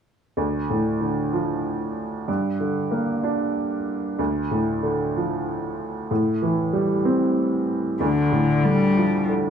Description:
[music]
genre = pop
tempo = 63 BPM (dotted quarters)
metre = 6/8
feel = straight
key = D minor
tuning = A4 = 440 Hz
[part]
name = clear upright piano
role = accompaniment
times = 0.4-9.5 s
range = D2 to D4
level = -22 LUFS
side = right 1 dB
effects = none
[part]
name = warm cello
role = melody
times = 8.0-9.3 s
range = D3 to G3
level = -20 LUFS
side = left 3 dB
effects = none
[sound]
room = light reverb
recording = studio reverb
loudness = -21 LUFS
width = side -7 dB against mid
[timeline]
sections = 0.4-8.0 A section; 8.0-9.5 B section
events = none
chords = 0.4 Dm; 2.3 Gm; 4.2 Dm; 6.1 Am7; 8.0 Dm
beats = | 0.37 1.32 | 2.28 3.23 | 4.19 5.14 | 6.10 7.05 | 8.01 8.96

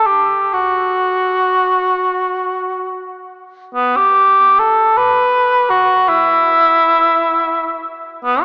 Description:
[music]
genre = classical, free, expressive piece for unaccompanied cor anglais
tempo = 26-57 BPM (dotted quarters)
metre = 6/8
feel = rubato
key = unclear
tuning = A4 = 440 Hz
[part]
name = mellow cor anglais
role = solo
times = 0.0-8.4 s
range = B3 to B4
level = -12 LUFS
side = equal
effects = none
[sound]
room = wet cathedral reverb, RT60 4.1 s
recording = worn, warbling old tape, cassette tape, warbly pitch drift, small speaker sound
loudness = -11 LUFS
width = side -37 dB against mid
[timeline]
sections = 0.0-3.7 A section; 3.7-8.4 B section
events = none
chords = none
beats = | 0.55 1.95 | 3.75 4.97 | 6.07 7.17 | 8.25

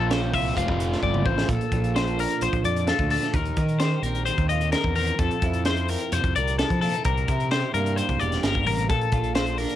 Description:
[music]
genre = math rock and midwest emo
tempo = 130 BPM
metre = 4/4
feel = straight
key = unclear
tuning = A4 = 439 Hz
[part]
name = twelve-string electric guitar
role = accompaniment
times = 0.0-9.8 s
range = F2 to C5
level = -30 LUFS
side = right 7 dB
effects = wide subtle chorus, cassette tape
[part]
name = twelve-string electric guitar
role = arpeggios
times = 0.0-9.8 s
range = A4 to F5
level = -26 LUFS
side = left 8 dB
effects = harmonic tremolo, cassette tape
[part]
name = overdriven electric guitar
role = riff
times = 0.0-1.5 s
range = Bb2 to F4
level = -30 LUFS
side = equal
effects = cassette tape
[part]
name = fuzz fingered electric bass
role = bass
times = 0.0-9.6 s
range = E1 to F3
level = -26 LUFS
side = equal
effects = overdrive
[part]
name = crisp fusion drum kit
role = drums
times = 0.1-9.8 s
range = hi-hat, kick drum, snare drum, toms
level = -28 LUFS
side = right 1 dB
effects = none
[sound]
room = light reverb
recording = home recording on cassette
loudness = -21 LUFS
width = side -12 dB against mid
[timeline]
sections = 0.0-1.5 A section; 1.5-9.8 B section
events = drum fill 1.0-1.5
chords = 0.0 Bbmadd9; 0.6 F69; 1.5 Bbmaj9; 3.3 Eb6; 5.2 Fmaj7; 7.1 C9; 8.9 Bbmaj9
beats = 0.11 0.57 1.03 | 1.50 1.96 2.42 2.88 | 3.35 3.81 4.28 4.74 | 5.20 5.67 6.13 6.59 | 7.05 7.51 7.98 8.44 | 8.90 9.36

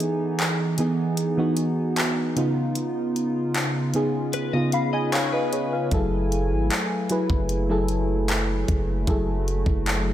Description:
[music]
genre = contemporary R&B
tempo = 76 BPM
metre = 4/4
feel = straight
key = F# dorian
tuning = A4 = 438 Hz
[part]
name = mellow FM electric piano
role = accompaniment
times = 0.0-10.1 s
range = C#3 to B5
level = -25 LUFS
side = equal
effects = chorus
[part]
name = hollow soft pad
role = sustained chords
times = 0.0-10.1 s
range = C#3 to G#5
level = -29 LUFS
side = right 1 dB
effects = chorus, sidechain pumping
[part]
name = smooth R&B drum kit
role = drums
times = 0.0-10.1 s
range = handclaps, hi-hat, kick drum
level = -26 LUFS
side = equal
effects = none
[part]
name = direct-recorded clean electric guitar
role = arpeggios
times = 4.3-5.9 s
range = B4 to E#5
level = -30 LUFS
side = left 7 dB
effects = analog chorus, tape echo
[part]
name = long sustained 808-style bass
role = bass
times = 5.9-10.1 s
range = F#1 to G#1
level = -25 LUFS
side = equal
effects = none
[sound]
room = light reverb, digital ambience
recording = none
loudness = -21 LUFS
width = side -12 dB against mid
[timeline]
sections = 0.0-10.1 A section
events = break 0.0-5.9; FM electric piano fill 4.3-5.9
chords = 0.0 Emaj7; 2.4 C#9; 5.9 F#m9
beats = 0.39 1.18 1.97 | 2.76 3.55 4.34 5.13 | 5.92 6.71 7.49 8.28 | 9.07 9.86

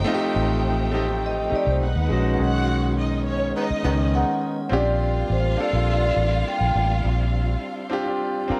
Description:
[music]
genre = lush 1970s-style soul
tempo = 103 BPM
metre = 4/4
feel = straight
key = Bb major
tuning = A4 = 441 Hz
[part]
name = vibraphone with soft mallets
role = melody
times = 0.0-6.9 s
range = B4 to G5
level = -29 LUFS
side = equal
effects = none
[part]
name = dark studio string section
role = second line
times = 0.0-8.5 s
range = Db4 to G5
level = -32 LUFS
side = equal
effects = none
[part]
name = clear grand piano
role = accompaniment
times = 0.0-8.6 s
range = D#3 to Bb4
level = -28 LUFS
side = equal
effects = none
[part]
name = tonewheel organ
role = sustained chords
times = 0.0-8.6 s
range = F3 to Eb4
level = -36 LUFS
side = equal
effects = overdrive, chorus vibrato, slow rotary speaker
[part]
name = vintage muted fingered electric bass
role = bass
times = 0.0-8.5 s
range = A1 to D#2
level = -25 LUFS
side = equal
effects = none
[part]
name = mellow horn section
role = stabs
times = 3.6-4.6 s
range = G#3 to D#4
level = -32 LUFS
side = equal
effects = none
[sound]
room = small room ambience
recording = none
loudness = -23 LUFS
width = mono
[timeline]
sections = 0.0-2.4 A section; 2.4-4.7 B section; 4.7-8.6 C section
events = grand piano solo 2.4-4.7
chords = 0.0 F9/A; 1.8 B6; 4.7 Bb6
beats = | 0.06 0.64 1.23 1.81 | 2.39 2.97 3.55 4.13 | 4.72 5.30 5.88 6.46 | 7.04 7.62 8.21

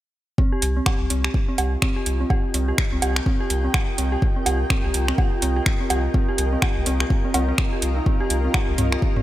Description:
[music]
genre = minimal techno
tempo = 125 BPM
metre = 4/4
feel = swing 59% on 16ths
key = C minor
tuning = A4 = 439 Hz
[part]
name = dark detuned synth bell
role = riff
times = 0.4-9.2 s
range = C4 to G4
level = -27 LUFS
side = equal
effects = chorus, tremolo, vintage 12-bit sampler grit, sidechain pumping, low-pass filter, tape echo
[part]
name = electronic kick drum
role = drums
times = 0.4-9.1 s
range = none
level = -22 LUFS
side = equal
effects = none
[part]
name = granular cloud pad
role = texture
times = 1.7-9.2 s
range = F4 to A5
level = -30 LUFS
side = equal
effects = built-in reverb, sidechain pumping
[part]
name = saturated sub bass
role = bass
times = 0.6-9.0 s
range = C2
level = -23 LUFS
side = equal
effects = sidechain pumping
[part]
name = garage drum kit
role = drums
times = 0.6-9.0 s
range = finger snaps, hi-hat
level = -26 LUFS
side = right 1 dB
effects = overdrive
[part]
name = electronic woodblock and toms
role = percussion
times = 0.9-9.2 s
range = none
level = -29 LUFS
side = right 3 dB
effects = none
[sound]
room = light reverb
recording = none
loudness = -19 LUFS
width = side -14 dB against mid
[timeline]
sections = 0.4-9.2 A section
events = none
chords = 0.4 Cm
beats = | 0.38 0.86 1.34 1.82 | 2.30 2.78 3.26 3.74 | 4.22 4.70 5.18 5.66 | 6.14 6.62 7.10 7.58 | 8.06 8.54 9.02

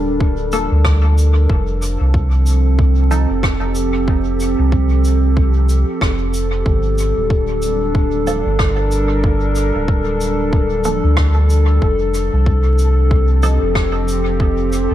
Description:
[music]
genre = ambient dub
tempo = 93 BPM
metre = 4/4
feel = swing 58% on 16ths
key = unclear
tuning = A4 = 440 Hz
[part]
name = warbly tape-like pad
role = sustained chords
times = 0.0-14.9 s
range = F3 to Bb4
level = -19 LUFS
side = equal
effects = chorus, built-in reverb
[part]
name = soft dub sub bass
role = bass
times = 0.0-14.9 s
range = D1 to D2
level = -15 LUFS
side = equal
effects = none
[part]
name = electronic kick drum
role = drums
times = 0.2-14.5 s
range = none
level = -17 LUFS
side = equal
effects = none
[part]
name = filtered dub chord stab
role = stabs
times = 0.5-3.3, 8.3-13.7 s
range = F3 to A4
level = -27 LUFS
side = right 1 dB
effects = phaser, lush chorus, dub echo
[part]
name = shaker and rim click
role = drums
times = 0.5-14.9 s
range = none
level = -27 LUFS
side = equal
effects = dub echo
[sound]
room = small room reverb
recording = vinyl crackle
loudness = -13 LUFS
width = side -12 dB against mid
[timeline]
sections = 0.0-14.9 A section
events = none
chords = 0.0 Gm9; 1.5 F; 6.7 Gmadd9; 11.8 F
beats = 0.21 0.85 | 1.50 2.14 2.79 3.43 | 4.08 4.72 5.37 6.01 | 6.66 7.30 7.95 8.59 | 9.24 9.88 10.53 11.17 | 11.82 12.46 13.11 13.76 | 14.40

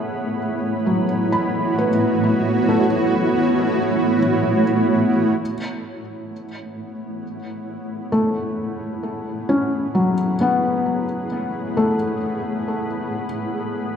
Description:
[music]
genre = ambient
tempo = 66 BPM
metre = 3/4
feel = straight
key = unclear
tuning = A4 = 440 Hz
[part]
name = granular cloud pad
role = sustained chords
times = 0.0-14.0 s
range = A3 to C#5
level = -22 LUFS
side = right 1 dB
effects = built-in reverb
[part]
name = felt-muted upright piano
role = arpeggios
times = 0.0-14.0 s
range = F#3 to B5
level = -22 LUFS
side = left 1 dB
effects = tape echo
[part]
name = organ-like drone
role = drone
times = 0.0-14.0 s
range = B3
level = -26 LUFS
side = equal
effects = ensemble chorus, built-in reverb
[sound]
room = wet concert hall reverb, RT60 2.2 s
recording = dark, warm production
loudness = -18 LUFS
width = side -7 dB against mid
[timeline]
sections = 0.0-5.4 A section; 5.4-14.0 B section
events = fade-in on ambient pad 5.4-14.0; fade-in on synth drone 5.4-14.0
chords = 0.0 Amaj7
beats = 0.86 1.77 | 2.68 3.59 4.50 | 5.41 6.31 7.22 | 8.13 9.04 9.95 | 10.86 11.77 12.68 | 13.59

